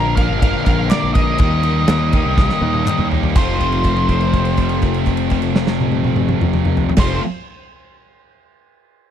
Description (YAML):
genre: classic rock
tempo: 123 BPM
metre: 4/4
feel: straight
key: F mixolydian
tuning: A4 = 441 Hz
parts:
  - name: octave-fuzz lead guitar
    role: melody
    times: 0.0-7.2 s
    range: Bb4 to F5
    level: -22 LUFS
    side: equal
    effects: distortion
  - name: sludgy distorted guitar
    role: riff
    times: 0.0-7.2 s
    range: Bb2 to Bb4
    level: -21 LUFS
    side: left 13 dB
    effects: overdrive
  - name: tight distorted guitar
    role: riff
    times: 0.0-7.2 s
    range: F2 to Bb4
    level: -23 LUFS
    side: right 13 dB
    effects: distortion
  - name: growling fingered electric bass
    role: bass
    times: 0.0-7.2 s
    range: F1 to Eb2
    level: -20 LUFS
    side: right 1 dB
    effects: overdrive
  - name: big rock drum kit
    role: drums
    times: 0.2-7.1 s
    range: crash cymbal, kick drum, ride cymbal, snare drum, toms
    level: -18 LUFS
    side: right 1 dB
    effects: none
  - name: group handclap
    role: percussion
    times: 0.9-3.6 s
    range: none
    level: -33 LUFS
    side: left 4 dB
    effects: none
room: small room ambience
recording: dry, close 1970s-style studio recording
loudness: -14 LUFS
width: side -9 dB against mid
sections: 0.0-3.4 A section; 3.4-7.3 B section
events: drum fill 2.4-3.4; held note 3.4-7.0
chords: 0.0 Bb; 1.4 Eb; 3.4 F